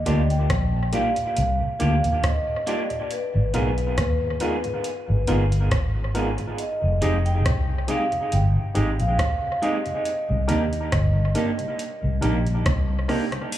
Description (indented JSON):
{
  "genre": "lovers rock reggae",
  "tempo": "69 BPM",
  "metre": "4/4",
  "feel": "swing 54% on 16ths",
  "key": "unclear",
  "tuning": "A4 = 440 Hz",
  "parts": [
    { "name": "vibraphone with medium mallets", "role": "melody", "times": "0.0-13.1 s", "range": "Cb5 to G5", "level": "-28 LUFS", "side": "equal", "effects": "tape echo, slapback echo" },
    { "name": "vintage muted fingered electric bass", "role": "bass", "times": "0.0-13.1 s", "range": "F1 to Eb2", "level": "-22 LUFS", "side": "equal", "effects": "none" },
    { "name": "barky tine electric piano", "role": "accompaniment", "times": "0.1-13.2 s", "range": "Bb3 to Bb4", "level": "-32 LUFS", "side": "left 2 dB", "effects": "overdrive, tape echo, slapback echo" },
    { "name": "mellow tonewheel organ", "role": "accompaniment", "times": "0.1-13.4 s", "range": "Eb2 to G4", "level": "-35 LUFS", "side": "equal", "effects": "slow rotary speaker, slapback echo" },
    { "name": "electric guitar through a small old amp", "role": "stabs", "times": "0.1-13.4 s", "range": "Ab3 to Ab4", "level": "-29 LUFS", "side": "right 4 dB", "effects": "tape echo, slapback echo" },
    { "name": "soft vintage rhythm box", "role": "drums", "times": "0.1-13.6 s", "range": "crash cymbal, hi-hat, kick drum, rim click", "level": "-27 LUFS", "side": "equal", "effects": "tape echo" },
    { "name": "soft string machine", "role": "second line", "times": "13.5-13.6 s", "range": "none", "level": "barely audible", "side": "none", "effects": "none" }
  ],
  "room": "light reverb",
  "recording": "live gig heard through the venue's PA, club reverb",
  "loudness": "-20 LUFS",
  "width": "side -12 dB against mid",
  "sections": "0.0-13.5 A section",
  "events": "none",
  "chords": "0.0 Ebmaj7; 3.1 Abm6; 6.6 Fm9; 10.1 Cm7"
}